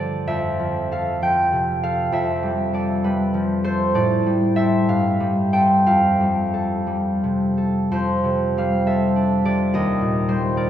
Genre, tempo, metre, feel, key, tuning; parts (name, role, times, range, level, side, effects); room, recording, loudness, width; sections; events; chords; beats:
classical, solo harp piece; 56-72 BPM (dotted quarters); 6/8; rubato; F lydian; A4 = 439 Hz
concert harp; solo; 0.0-10.7 s; Eb2 to G5; -18 LUFS; equal
wet cathedral reverb, RT60 4.4 s; heard from further back in the room; -18 LUFS; side -10 dB against mid
0.0-7.9 A section; 7.9-10.7 B section
0.3 Fadd9; 2.2 G13/F; 4.0 Am7; 4.9 G9sus4; 5.9 Fadd9; 7.9 F69; 9.8 Ebmaj7
| 0.29 1.24 | 2.16 3.07 | 3.98 4.91 | 5.88 6.90 | 7.93 8.89 | 9.76 10.59